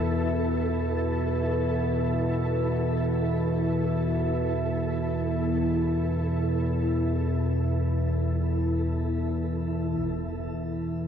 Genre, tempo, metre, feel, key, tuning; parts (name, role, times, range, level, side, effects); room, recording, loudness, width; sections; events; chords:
dark ambient drone; free time; A4 = 440 Hz
deep dark ambient pad; sustained chords; 0.0-11.1 s; E4 to E5; -30 LUFS; equal; chorus, built-in reverb, shimmer reverb
analog drone; drone; 0.0-11.1 s; E2 to B2; -26 LUFS; equal; chorus
flickering grainy texture; texture; 0.0-10.0 s; E4 to A4; -35 LUFS; right 1 dB; built-in reverb, shimmer reverb
impact; percussion; 10.0-10.2 s; -44 LUFS; equal
wet huge ambient reverb, RT60 7.5 s; cassette tape; -24 LUFS; side -8 dB against mid
0.0-9.9 A section; 9.9-11.1 B section
0.0 E5